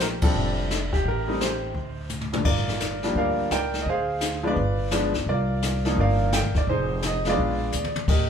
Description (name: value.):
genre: jazz piano trio.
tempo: 171 BPM.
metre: 4/4.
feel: swing 64% on 8ths.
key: G minor.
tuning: A4 = 440 Hz.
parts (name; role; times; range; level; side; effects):
clear concert grand piano; melody; 0.0-8.3 s; G2 to G5; -25 LUFS; equal; none.
upright bass; bass; 0.0-8.3 s; F1 to Eb2; -28 LUFS; equal; none.
jazz brush drum kit; drums; 0.0-8.3 s; brushed snare drum, crash cymbal, hi-hat, kick drum, ride cymbal, snare drum, toms; -27 LUFS; left 1 dB; none.
room: wet large studio reverb, RT60 1.1 s.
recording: band playing live in one room.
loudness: -22 LUFS.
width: side -7 dB against mid.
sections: 0.0-2.5 A section; 2.5-8.3 B section.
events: band accent 0.2; drum fill 2.1-2.5, 7.7-8.1.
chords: 0.0 Bb6; 1.1 Am7; 1.8 D5; 2.5 Gm7; 3.9 Dm7b5; 4.6 G7b9; 5.3 Cm11; 6.7 Fm7; 7.4 Bb7b9.